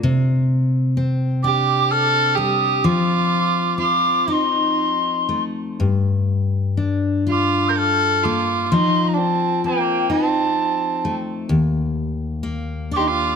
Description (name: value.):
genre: celtic folk, Celtic slow air.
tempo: 40-43 BPM (dotted quarters).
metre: 6/8.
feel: rubato.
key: unclear.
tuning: A4 = 439 Hz.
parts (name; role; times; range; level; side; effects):
picked steel-string acoustic guitar; accompaniment; 0.0-13.4 s; Eb2 to F4; -20 LUFS; left 2 dB; none.
mellow hollow wooden whistle; melody; 1.4-13.4 s; G5 to G6; -20 LUFS; equal; none.
dark fiddle; second line; 1.4-13.4 s; Bb3 to Bb4; -23 LUFS; right 6 dB; none.
room: light reverb.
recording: close, detailed microphones.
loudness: -17 LUFS.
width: side -6 dB against mid.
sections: 0.0-13.4 A section.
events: none.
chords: 0.0 Csus2; 2.8 F7; 5.8 Gm7; 8.7 F7; 11.5 Ebmaj7(no3).